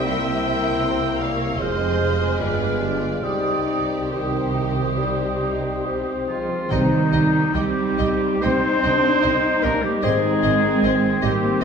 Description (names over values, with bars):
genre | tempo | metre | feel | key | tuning
classical, slow romantic movement for symphony orchestra | 66-79 BPM | 4/4 | rubato | C minor | A4 = 440 Hz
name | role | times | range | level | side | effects
warm studio violin section | melody | 0.0-11.3 s | C5 to C6 | -34 LUFS | left 1 dB | none
mellow hollow small flute group | second line | 0.0-11.6 s | Eb5 to F6 | -30 LUFS | right 2 dB | none
warm clarinet | second line | 0.0-11.6 s | Eb4 to C5 | -25 LUFS | left 1 dB | none
warm studio violin section | second line | 0.0-11.6 s | G3 to Eb5 | -32 LUFS | left 2 dB | none
dark bassoon | accompaniment | 0.0-10.3 s | Eb3 to C4 | -27 LUFS | equal | none
warm studio viola section | accompaniment | 0.0-11.6 s | G3 to E5 | -29 LUFS | equal | none
warm studio cello section | bass | 0.0-11.6 s | F2 to C4 | -27 LUFS | right 4 dB | none
warm studio double bass section | bass | 0.0-11.3 s | F1 to C2 | -27 LUFS | right 2 dB | none
warm French horn section | sustained chords | 0.1-11.6 s | G3 to F4 | -27 LUFS | left 4 dB | none
warm oboe | second line | 6.3-11.6 s | Eb4 to C5 | -28 LUFS | equal | none
bright trombone section | sustained chords | 6.7-11.6 s | Eb3 to Eb4 | -28 LUFS | right 2 dB | none
timpani | percussion | 6.7-7.9 s | C3 | -26 LUFS | equal | none
room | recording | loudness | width
wet recital hall reverb, RT60 1.6 s | recorded in a church or concert hall | -18 LUFS | side -6 dB against mid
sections
0.0-6.7 A section; 6.7-11.6 A section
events
none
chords
0.1 C7; 1.6 Fm; 2.4 G7b9; 3.2 Cm; 10.0 Ab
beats
| 0.05 0.83 1.59 2.39 | 3.23 4.11 4.97 5.84 | 6.71 7.54 8.43 9.24 | 10.04 10.83 11.62